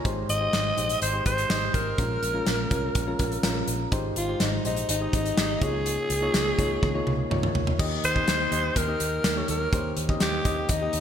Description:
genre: 1980s-style pop.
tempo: 124 BPM.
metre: 4/4.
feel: straight.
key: unclear.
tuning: A4 = 440 Hz.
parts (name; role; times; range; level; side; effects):
soft electric-piano-like synth keys; accompaniment; 0.0-11.0 s; Ab2 to Eb5; -30 LUFS; left 2 dB; chorus.
vintage muted fingered electric bass; bass; 0.0-11.0 s; Ab1 to Eb2; -31 LUFS; equal; none.
modern studio drum kit; drums; 0.1-11.0 s; crash cymbal, hi-hat, kick drum, snare drum, toms; -27 LUFS; equal; gated reverb.
raspy alto saxophone; melody; 0.3-11.0 s; Eb4 to Eb5; -28 LUFS; equal; digital delay.
room: moderate lush hall reverb, RT60 2.0 s.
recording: bright 1980s-style digital production.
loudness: -23 LUFS.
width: side -8 dB against mid.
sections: 0.0-7.8 A section; 7.8-11.0 B section.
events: drum fill 6.8-7.8.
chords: 0.1 Abmaj7; 2.0 Bbm7; 3.9 Abmaj7; 5.6 Db69; 7.8 Eb.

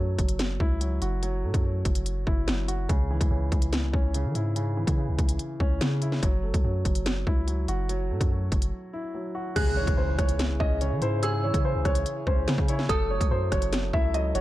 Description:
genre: hip hop, drill.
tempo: 144 BPM.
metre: 4/4.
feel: half-time.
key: C# harmonic minor.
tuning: A4 = 440 Hz.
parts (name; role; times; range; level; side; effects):
dark concert grand piano; accompaniment; 0.0-14.4 s; C#3 to F#4; -32 LUFS; equal; none.
long sustained 808-style bass; bass; 0.0-14.4 s; F#1 to E3; -28 LUFS; equal; none.
drill drum kit; drums; 0.2-14.4 s; crash cymbal, hi-hat, kick drum, rim click, snare drum; -26 LUFS; equal; none.
dark upright piano; melody; 9.6-14.4 s; G#4 to E5; -29 LUFS; equal; none.
dark detuned synth bell; second line; 9.6-13.3 s; D#6 to F#6; -35 LUFS; right 5 dB; chorus, digital delay.
mellow French horn section; sustained chords; 9.6-14.4 s; C#3 to A4; -39 LUFS; equal; none.
impact; sound effects; 9.6-11.2 s; none; -37 LUFS; equal; none.
room: digital ambience.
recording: dark, warm production.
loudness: -24 LUFS.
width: side -16 dB against mid.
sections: 0.0-9.6 A section; 9.6-14.4 B section.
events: break 8.7-9.6; impact 9.6-11.2.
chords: 0.0 F#m7; 2.9 C#m; 6.2 F#m7; 9.6 C#m; 12.9 F#m7.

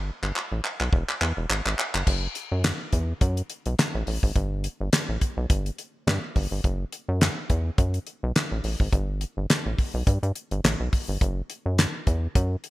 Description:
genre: early-eighties boogie funk.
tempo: 105 BPM.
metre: 4/4.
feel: swing 56% on 16ths.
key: F# phrygian.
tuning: A4 = 441 Hz.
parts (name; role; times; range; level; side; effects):
rubbery square bass; bass; 0.0-12.6 s; E1 to G2; -26 LUFS; equal; none.
damped 70s drum kit; drums; 0.2-12.7 s; crash cymbal, handclaps, hi-hat, kick drum, snare drum; -24 LUFS; equal; gated reverb.
room: little or no reverb.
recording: bright 1980s-style digital production.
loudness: -23 LUFS.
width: side -18 dB against mid.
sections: 0.0-2.1 A section; 2.1-12.7 B section.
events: drum fill 0.0-2.1.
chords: none.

